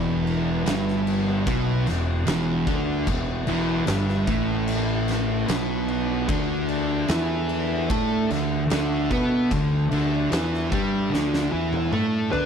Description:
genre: stoner and doom metal.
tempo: 75 BPM.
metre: 4/4.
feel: straight.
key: E minor.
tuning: A4 = 440 Hz.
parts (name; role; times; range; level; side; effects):
metallic inharmonic drone; sustained chords; 0.0-12.5 s; D4 to F#5; -34 LUFS; left 2 dB; chorus, built-in reverb.
thick fuzz guitar; riff; 0.0-12.5 s; E2 to D5; -27 LUFS; left 10 dB; distortion.
thick fuzz guitar; riff; 0.0-12.5 s; E2 to D5; -26 LUFS; right 9 dB; distortion.
fuzz fingered electric bass; bass; 0.0-12.5 s; E1 to D3; -28 LUFS; equal; overdrive.
oversized low-tuned drum kit; drums; 0.3-12.5 s; crash cymbal, kick drum, snare drum, toms; -29 LUFS; equal; none.
fuzz lead guitar; melody; 12.3-12.5 s; B4; -23 LUFS; equal; wah, distortion, slapback echo.
room: little or no reverb.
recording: none.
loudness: -21 LUFS.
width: side -7 dB against mid.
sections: 0.0-12.5 A section.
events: drum fill 11.1-12.5.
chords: 0.0 Em; 6.3 D5.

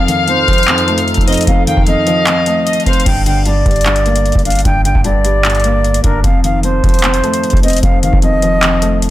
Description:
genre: hip hop, trap.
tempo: 151 BPM.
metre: 4/4.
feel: half-time.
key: G minor.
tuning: A4 = 440 Hz.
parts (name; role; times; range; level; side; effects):
silver concert flute; melody; 0.0-9.0 s; Bb4 to G5; -17 LUFS; right 2 dB; low-pass filter.
warm studio violin section; second line; 0.0-3.1 s; Eb5 to G5; -18 LUFS; left 4 dB; tape echo.
dark grand piano; accompaniment; 0.0-9.1 s; F2 to D4; -17 LUFS; left 3 dB; low-pass filter.
hollow soft pad; sustained chords; 0.0-3.0 s; F2 to A4; -21 LUFS; right 2 dB; wide subtle chorus, low-pass filter.
booming analog drum machine; drums; 0.1-9.1 s; crash cymbal, handclaps, hi-hat, kick drum; -14 LUFS; equal; none.
long sustained 808-style bass; bass; 3.1-9.1 s; F1 to G1; -16 LUFS; equal; none.
room: studio reverb.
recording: none.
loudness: -10 LUFS.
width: side -14 dB against mid.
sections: 0.0-3.1 A section; 3.1-9.1 B section.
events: filter sweep 0.0-3.1.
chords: 0.0 F7; 3.1 Gm; 6.2 F7.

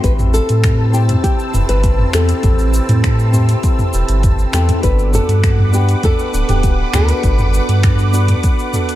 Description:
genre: sunset chillout.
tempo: 100 BPM.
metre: 4/4.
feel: straight.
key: unclear.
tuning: A4 = 441 Hz.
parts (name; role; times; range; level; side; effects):
flamenco guitar; melody; 0.0-8.7 s; G4 to B4; -22 LUFS; left 2 dB; digital delay.
soft electric-piano-like synth keys; accompaniment; 0.0-9.0 s; B3 to F#5; -22 LUFS; moving between left 7 dB and right 5 dB; chorus, tremolo, auto-pan, digital delay.
lush unison pad; sustained chords; 0.0-9.0 s; C4 to E6; -24 LUFS; right 2 dB; chorus, phaser.
warm sub bass; bass; 0.0-8.4 s; D1 to A2; -14 LUFS; equal; none.
deep house drum kit; drums; 0.0-9.0 s; cabasa, finger snaps, hi-hat, toms; -21 LUFS; right 1 dB; small room ambience.
electronic kick drum; drums; 0.0-8.6 s; none; -16 LUFS; equal; small room ambience.
room: digital ambience.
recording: none.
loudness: -12 LUFS.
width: side -14 dB against mid.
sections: 0.0-9.0 A section.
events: none.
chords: 0.0 Am7; 4.8 Gmaj7.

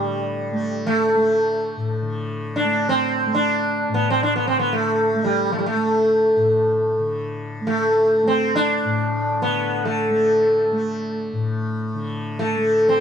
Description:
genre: indian classical, Hindustani.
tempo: free time.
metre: none.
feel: none.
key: A raga bageshri.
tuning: A4 = 440 Hz.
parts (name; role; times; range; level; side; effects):
sitar; melody; 0.0-13.0 s; G3 to D4; -19 LUFS; equal; none.
tanpura; drone; 0.0-13.0 s; A2 to A3; -26 LUFS; left 1 dB; none.
room: light reverb.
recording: dark, warm production.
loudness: -18 LUFS.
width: side -8 dB against mid.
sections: 0.0-2.0 A section; 2.0-13.0 A section.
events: none.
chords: none.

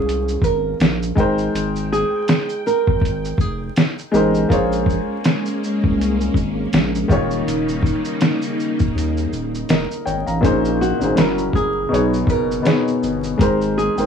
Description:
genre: lo-fi hip hop.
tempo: 81 BPM.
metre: 4/4.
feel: swing 56% on 16ths.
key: Ab major.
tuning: A4 = 440 Hz.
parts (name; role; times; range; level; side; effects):
flamenco guitar; melody; 0.0-3.9, 10.8-14.1 s; Gb4 to Bb4; -22 LUFS; right 3 dB; low-pass filter, tape echo, plate reverb.
warm upright piano; accompaniment; 0.0-14.1 s; Bb2 to Bb5; -21 LUFS; left 2 dB; low-pass filter, plate reverb.
string machine, violas; sustained chords; 0.0-10.4 s; Db3 to G5; -24 LUFS; left 1 dB; ensemble chorus, low-pass filter.
saturated sub bass; bass; 0.0-14.1 s; Eb1 to Eb2; -23 LUFS; right 1 dB; none.
lo-fi sampler-style drum kit; drums; 0.1-14.1 s; hi-hat, kick drum, shaker, snare drum; -19 LUFS; equal; none.
room: moderate studio reverb, RT60 0.6 s.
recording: vinyl crackle, small room ambience.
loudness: -16 LUFS.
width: side -7 dB against mid.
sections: 0.0-10.4 A section; 10.4-14.1 B section.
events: kick muted 8.9-10.4.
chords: 0.0 Bbm9; 1.2 Abmaj9; 4.5 Bbm9; 7.1 Eb7; 10.4 Bbm11; 11.2 Gb7b9; 11.9 B6; 13.4 Abmaj7.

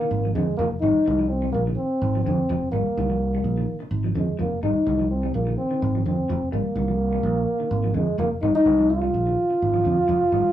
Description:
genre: afrobeat.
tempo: 126 BPM.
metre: 4/4.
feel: straight.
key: F dorian.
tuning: A4 = 442 Hz.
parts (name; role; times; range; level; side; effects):
trombone with bucket mute; melody; 0.0-10.5 s; Ab3 to F4; -22 LUFS; equal; none.
semi-hollow electric guitar; arpeggios; 0.0-10.5 s; D3 to G3; -29 LUFS; left 2 dB; none.
fingered electric bass; bass; 0.1-10.5 s; F1 to F2; -25 LUFS; right 1 dB; none.
room: moderate small room reverb, RT60 0.5 s.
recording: rough rehearsal-room recording, warm saturation, small room ambience, faint mains hum.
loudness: -20 LUFS.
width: side -12 dB against mid.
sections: 0.0-10.5 A section.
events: none.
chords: 0.0 Fm11.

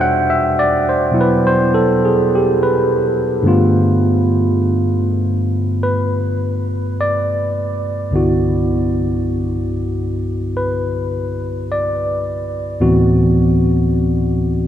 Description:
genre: jazz ballad.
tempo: 52 BPM.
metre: 4/4.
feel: swing 66% on 8ths.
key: G major.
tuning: A4 = 442 Hz.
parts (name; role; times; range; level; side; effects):
barky tine electric piano; solo; 0.0-14.7 s; C2 to G5; -14 LUFS; equal; overdrive.
room: wet cathedral reverb, RT60 7.1 s.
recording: in a vast, echoing space.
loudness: -14 LUFS.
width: side -10 dB against mid.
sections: 0.0-14.7 A section.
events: none.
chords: 0.0 Em7; 3.5 G9; 8.1 Cmaj9#11; 12.8 D13.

